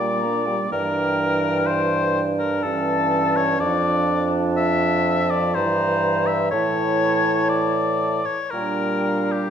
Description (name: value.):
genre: classical, slow romantic movement for wind quintet.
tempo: 62 BPM.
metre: 3/4.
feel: rubato.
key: D minor.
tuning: A4 = 440 Hz.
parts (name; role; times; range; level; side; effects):
silver concert flute; melody; 0.0-9.5 s; F5 to Bb5; -28 LUFS; left 4 dB; none.
clear oboe; second line; 0.0-9.5 s; G4 to E5; -23 LUFS; left 4 dB; none.
mellow French horn; accompaniment; 0.0-9.5 s; E3 to Bb3; -28 LUFS; equal; none.
warm clarinet; accompaniment; 0.0-9.5 s; Bb3 to E4; -28 LUFS; right 6 dB; none.
warm bassoon; bass; 0.0-9.5 s; F2 to Bb2; -24 LUFS; right 3 dB; none.
room: wet recital hall reverb, RT60 1.4 s.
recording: none.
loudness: -18 LUFS.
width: side -8 dB against mid.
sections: 0.0-9.5 A section.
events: none.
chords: 0.0 Gm/Bb; 0.7 Em7b5/G; 2.6 A7/G; 3.6 Dm/F; 5.6 Edim/G; 6.5 A; 8.5 Gm/Bb.